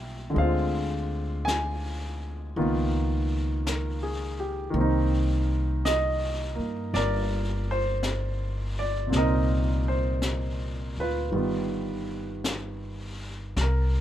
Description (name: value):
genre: jazz ballad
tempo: 55 BPM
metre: 4/4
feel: swing 69% on 8ths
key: C minor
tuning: A4 = 440 Hz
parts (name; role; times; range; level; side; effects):
- warm baby grand piano; accompaniment; 0.0-14.0 s; Bb2 to Ab5; -28 LUFS; right 1 dB; none
- upright bass; bass; 0.0-14.0 s; G1 to G2; -28 LUFS; equal; none
- vintage brush drum kit; drums; 0.4-14.0 s; brushed snare drum, hi-hat, snare drum; -36 LUFS; left 2 dB; none
room: little or no reverb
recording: none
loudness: -25 LUFS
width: side -11 dB against mid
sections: 0.0-13.6 A section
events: none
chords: 0.4 Dm7b5; 2.6 Db13; 4.8 Cm9; 11.3 Gaug7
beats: | 0.36 1.47 2.57 3.66 | 4.76 5.86 6.95 8.04 | 9.13 10.23 11.33 12.45 | 13.57